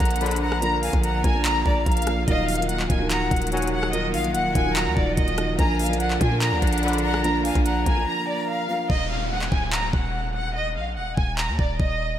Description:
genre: hip hop, trap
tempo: 145 BPM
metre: 4/4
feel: half-time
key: Eb harmonic minor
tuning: A4 = 439 Hz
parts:
  - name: dark symphonic violin section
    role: melody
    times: 0.0-12.2 s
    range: D5 to Bb5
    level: -27 LUFS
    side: equal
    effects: analog delay
  - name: breathy bright jazz flute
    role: second line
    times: 0.0-8.9 s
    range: F5 to Cb6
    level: -30 LUFS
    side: left 4 dB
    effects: analog delay
  - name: dark baby grand piano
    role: accompaniment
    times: 0.0-8.9 s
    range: F3 to Bb4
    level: -29 LUFS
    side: right 3 dB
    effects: none
  - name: bright symphonic string section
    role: sustained chords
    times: 0.0-8.9 s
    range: D3 to D4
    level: -30 LUFS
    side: equal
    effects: none
  - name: hard-hitting 808-style bass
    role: bass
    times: 0.0-12.2 s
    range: D1 to Bb2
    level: -27 LUFS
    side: equal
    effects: none
  - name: trap drum kit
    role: drums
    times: 0.0-11.9 s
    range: handclaps, hi-hat, kick drum, rim click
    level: -25 LUFS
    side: equal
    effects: none
  - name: warm brass ensemble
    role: stabs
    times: 0.2-0.6, 3.5-3.9, 6.8-7.2 s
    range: Bb1 to Gb3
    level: -32 LUFS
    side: left 4 dB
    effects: none
  - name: downlifter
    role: sound effects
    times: 8.9-12.2 s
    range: none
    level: -35 LUFS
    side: equal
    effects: none
room: moderate lush hall reverb, RT60 2.3 s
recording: dreamy mix soaked in reverb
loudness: -20 LUFS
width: side -11 dB against mid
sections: 0.0-8.9 A section; 8.9-12.2 B section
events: break 8.1-8.9, 8.9-12.2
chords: 0.0 Bb; 2.3 Ebmadd9; 5.6 Bb; 8.9 Ebm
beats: 0.21 | 0.62 1.04 1.45 1.86 | 2.28 2.69 3.10 3.52 | 3.93 4.35 4.76 5.17 | 5.59 6.00 6.42 6.83 | 7.24 7.66 8.07 8.48 | 8.90 9.31 9.73 10.14 | 10.55 10.97 11.38 11.79

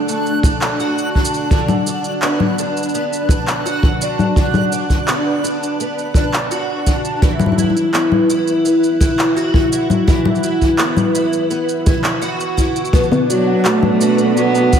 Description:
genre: folktronica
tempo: 84 BPM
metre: 4/4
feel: straight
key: B minor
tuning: A4 = 440 Hz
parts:
  - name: picked twelve-string acoustic guitar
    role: arpeggios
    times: 0.0-14.8 s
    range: B2 to F#4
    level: -18 LUFS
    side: equal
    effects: ensemble chorus, diffuse ambient delay
  - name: backwards swelling texture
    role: texture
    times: 0.0-13.0 s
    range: F#6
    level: -30 LUFS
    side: right 3 dB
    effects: built-in reverb
  - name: electronic shaker, handclaps and congas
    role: drums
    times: 0.1-14.8 s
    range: none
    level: -20 LUFS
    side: left 3 dB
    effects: overdrive
  - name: kick drum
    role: drums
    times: 0.4-14.8 s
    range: none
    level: -16 LUFS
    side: equal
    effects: none
  - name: celesta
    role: second line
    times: 12.9-14.8 s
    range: F#4 to F#5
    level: -18 LUFS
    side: left 2 dB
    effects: ensemble chorus, analog delay
  - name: dark string quartet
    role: sustained chords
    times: 12.9-14.8 s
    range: B2 to A4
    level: -22 LUFS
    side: right 3 dB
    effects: none
  - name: rich cello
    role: melody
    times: 13.3-14.8 s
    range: F#3 to B3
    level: -15 LUFS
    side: right 3 dB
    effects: none
room: wet plate reverb, RT60 2.3 s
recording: dreamy mix soaked in reverb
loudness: -14 LUFS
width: side -8 dB against mid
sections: 0.0-12.9 A section; 12.9-14.8 B section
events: none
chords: 0.0 D; 1.5 Bm/D; 7.2 Esus2; 12.9 Bm7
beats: 0.08 0.80 | 1.51 2.22 2.94 3.65 | 4.37 5.08 5.80 6.51 | 7.22 7.94 8.65 9.37 | 10.08 10.80 11.51 12.22 | 12.94 13.65 14.37

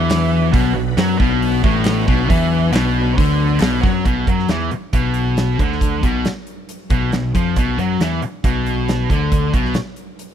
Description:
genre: classic rock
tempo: 137 BPM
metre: 4/4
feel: straight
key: B minor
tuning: A4 = 441 Hz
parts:
  - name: bright tonewheel organ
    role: sustained chords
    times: 0.0-4.0 s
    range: F#3 to B4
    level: -29 LUFS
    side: right 2 dB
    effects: slow rotary speaker, overdrive, chorus vibrato
  - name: sludgy distorted guitar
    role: riff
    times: 0.0-9.8 s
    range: A2 to F#3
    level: -20 LUFS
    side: left 10 dB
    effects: overdrive
  - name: tight distorted guitar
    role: riff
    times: 0.0-9.7 s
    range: A2 to F#3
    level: -22 LUFS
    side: right 12 dB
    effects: distortion
  - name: picked electric bass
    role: bass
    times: 0.0-9.7 s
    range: A1 to F#2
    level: -21 LUFS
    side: right 1 dB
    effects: none
  - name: huge arena drum kit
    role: drums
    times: 0.1-10.3 s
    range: hi-hat, kick drum, snare drum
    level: -20 LUFS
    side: right 1 dB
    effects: none
  - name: group handclap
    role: percussion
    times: 0.1-3.7 s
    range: none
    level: -32 LUFS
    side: left 8 dB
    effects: none
room: studio reverb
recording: dry, close 1970s-style studio recording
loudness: -15 LUFS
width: side -9 dB against mid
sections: 0.0-4.1 A section; 4.1-10.3 B section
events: none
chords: 0.0 Bm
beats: 0.10 | 0.54 0.98 1.42 1.86 | 2.30 2.74 3.18 3.62 | 4.06 4.50 4.93 5.37 | 5.81 6.25 6.69 7.13 | 7.57 8.00 8.44 8.88 | 9.31 9.75 10.19

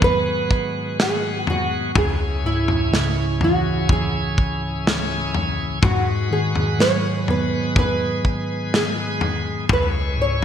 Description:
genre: pop ballad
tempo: 62 BPM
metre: 4/4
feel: straight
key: C# minor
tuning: A4 = 440 Hz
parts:
  - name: nylon-string guitar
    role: melody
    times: 0.0-10.4 s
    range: E4 to C#5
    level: -24 LUFS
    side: right 1 dB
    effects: analog chorus
  - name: bell-like tine electric piano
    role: accompaniment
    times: 0.0-10.4 s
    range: C#2 to B3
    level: -24 LUFS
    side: moving between left 3 dB and right 3 dB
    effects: auto-pan
  - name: bright tonewheel organ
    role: sustained chords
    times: 0.0-10.4 s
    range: G#2 to C#5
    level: -27 LUFS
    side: equal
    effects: overdrive, slow rotary speaker
  - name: modern studio drum kit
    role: drums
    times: 0.0-10.4 s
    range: kick drum, snare drum, toms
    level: -22 LUFS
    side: left 1 dB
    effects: gated reverb
room: moderate lush hall reverb, RT60 2.9 s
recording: bright 1980s-style digital production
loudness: -18 LUFS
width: side -9 dB against mid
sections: 0.0-10.4 A section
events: none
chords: 0.0 G#m7; 2.0 C#m; 5.8 G#m7; 9.7 C#m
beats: 0.02 0.99 | 1.96 2.92 3.89 4.86 | 5.83 6.79 7.76 8.73 | 9.70

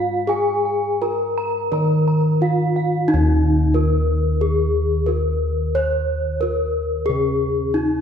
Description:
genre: Javanese gamelan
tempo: 81-90 BPM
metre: 4/4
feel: straight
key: Eb slendro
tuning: A4 = 438 Hz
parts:
  - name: gamelan-type bronze metallophone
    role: melody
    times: 0.0-8.0 s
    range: Eb4 to Db5-40c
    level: -21 LUFS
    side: left 2 dB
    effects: none
  - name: gamelan-type bronze metallophone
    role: arpeggios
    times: 0.0-3.1 s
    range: F5+40c to Bb5+20c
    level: -25 LUFS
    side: right 4 dB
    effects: none
  - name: gamelan-type bossed gongs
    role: bass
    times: 0.0-8.0 s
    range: Eb2 to Db5-40c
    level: -20 LUFS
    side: equal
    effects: none
room: wet scoring stage reverb, RT60 1.6 s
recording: recorded in a church or concert hall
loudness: -17 LUFS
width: side -8 dB against mid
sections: 0.0-3.1 A section; 3.1-8.0 B section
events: none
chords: none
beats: | 0.29 1.01 1.72 2.41 | 3.09 3.75 4.42 5.09 | 5.75 6.42 7.09 7.75

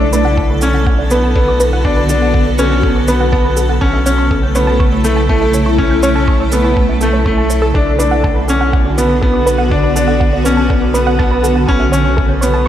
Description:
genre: piano and strings electronica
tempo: 122 BPM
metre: 4/4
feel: straight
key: B minor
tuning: A4 = 440 Hz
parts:
  - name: granular cloud pad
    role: sustained chords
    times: 0.0-12.7 s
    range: C#3 to A4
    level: -17 LUFS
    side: equal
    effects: built-in reverb, analog chorus, sidechain pumping, shimmer reverb
  - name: analog pluck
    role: arpeggios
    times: 0.0-12.7 s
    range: A4 to G6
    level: -21 LUFS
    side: right 2 dB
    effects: chorus, sidechain pumping, diffuse ambient delay, shimmer reverb
  - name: bright upright piano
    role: riff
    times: 0.0-12.7 s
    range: A3 to D4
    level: -16 LUFS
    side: left 1 dB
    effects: diffuse ambient delay, shimmer reverb
  - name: round analog bass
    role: bass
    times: 0.0-12.7 s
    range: B1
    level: -16 LUFS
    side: equal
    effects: sidechain pumping
  - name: shaker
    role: drums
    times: 0.1-12.5 s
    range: none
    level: -28 LUFS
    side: right 4 dB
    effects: overdrive
  - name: electronic kick drum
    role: drums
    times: 0.4-12.3 s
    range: none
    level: -16 LUFS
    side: equal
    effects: none
room: moderate lush hall reverb, RT60 1.8 s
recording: dreamy mix soaked in reverb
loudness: -10 LUFS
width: side -11 dB against mid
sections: 0.0-12.7 A section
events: filter sweep on synth arpeggio sound 0.0-12.7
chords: 0.0 Bm7; 3.8 A/B; 7.8 Bm7; 11.7 A/B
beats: 0.38 0.87 1.36 | 1.85 2.34 2.83 3.33 | 3.82 4.31 4.80 5.29 | 5.79 6.28 6.77 7.26 | 7.75 8.24 8.74 9.23 | 9.72 10.21 10.70 11.20 | 11.69 12.18 12.67

